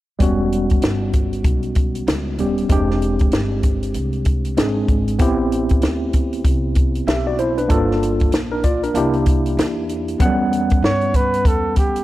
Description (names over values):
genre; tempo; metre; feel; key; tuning
hip hop, jazz-hop; 96 BPM; 4/4; swing 62% on 16ths; unclear; A4 = 443 Hz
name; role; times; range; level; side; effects
tine electric piano; accompaniment; 0.2-12.0 s; F#3 to F#5; -20 LUFS; equal; fast stereo tremolo
upright bass; bass; 0.2-12.0 s; D#1 to G2; -24 LUFS; equal; transformer saturation
compact cocktail drum kit; drums; 0.2-12.0 s; hi-hat, kick drum, snare drum; -18 LUFS; equal; none
mellow flugelhorn; melody; 10.8-12.0 s; G4 to C#5; -19 LUFS; right 1 dB; none
room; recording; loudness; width
light reverb, studio reverb; none; -16 LUFS; side -16 dB against mid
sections
0.2-10.2 A section; 10.2-12.0 B section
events
none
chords
0.2 Em69; 2.7 E7alt; 5.2 Am9; 7.7 Gm9; 8.9 C9; 10.2 Em69